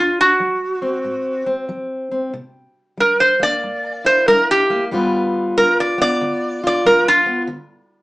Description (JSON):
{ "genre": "acoustic country blues, solo or duo", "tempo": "93 BPM", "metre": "4/4", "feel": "swing 64% on 8ths", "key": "G mixolydian", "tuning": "A4 = 440 Hz", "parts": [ { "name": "metal-body resonator slide guitar", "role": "melody", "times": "0.0-7.4 s", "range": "F4 to D5", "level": "-14 LUFS", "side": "right 1 dB", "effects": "none" }, { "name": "fingerpicked plugged-in steel-string acoustic guitar", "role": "accompaniment", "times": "0.0-8.0 s", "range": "G2 to B4", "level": "-21 LUFS", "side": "left 1 dB", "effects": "none" } ], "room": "moderate studio reverb, RT60 0.6 s", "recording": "band playing live in one room, small speaker sound", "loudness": "-15 LUFS", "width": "side -20 dB against mid", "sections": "0.0-8.0 A section", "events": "resonator guitar played with a steel bar solo 0.0-8.0", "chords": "0.0 D7; 2.3 C7; 4.9 G7; 7.5 N.C.", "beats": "0.39 1.04 1.69 | 2.33 2.98 3.62 4.26 | 4.91 5.55 6.20 6.84 | 7.49" }